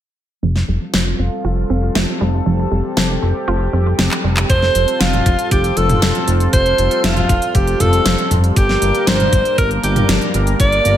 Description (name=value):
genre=synthwave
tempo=118 BPM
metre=4/4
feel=straight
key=unclear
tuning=A4 = 442 Hz
part: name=chorused pulse-width pad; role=sustained chords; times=0.4-11.0 s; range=G3 to Bb4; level=-22 LUFS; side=left 1 dB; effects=sidechain pumping, shimmer reverb
part: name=wide unison pluck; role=arpeggios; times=0.4-4.5 s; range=F3 to F4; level=-25 LUFS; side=right 4 dB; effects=cassette tape, tape echo, shimmer reverb
part: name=fat analog bass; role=bass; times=0.4-11.0 s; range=F1 to G1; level=-17 LUFS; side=equal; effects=none
part: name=pop drum kit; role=drums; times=0.6-11.0 s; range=handclaps, hi-hat, snare drum, toms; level=-19 LUFS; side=equal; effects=studio ambience, gated reverb
part: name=bright alto saxophone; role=melody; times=4.5-11.0 s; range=F4 to D5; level=-17 LUFS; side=right 1 dB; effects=tape echo, shimmer reverb
part: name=electronic kick drum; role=drums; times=4.5-10.7 s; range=none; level=-15 LUFS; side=equal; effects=studio ambience
room=light reverb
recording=none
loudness=-13 LUFS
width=side -11 dB against mid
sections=0.4-4.5 A section; 4.5-11.0 B section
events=filter sweep on analog synth bass 0.4-4.5; filter sweep on analog synth pad 0.4-4.5; filter sweep on synth arpeggio sound 0.4-4.5; drum fill 4.1-4.5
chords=0.4 Fadd9; 8.6 Gm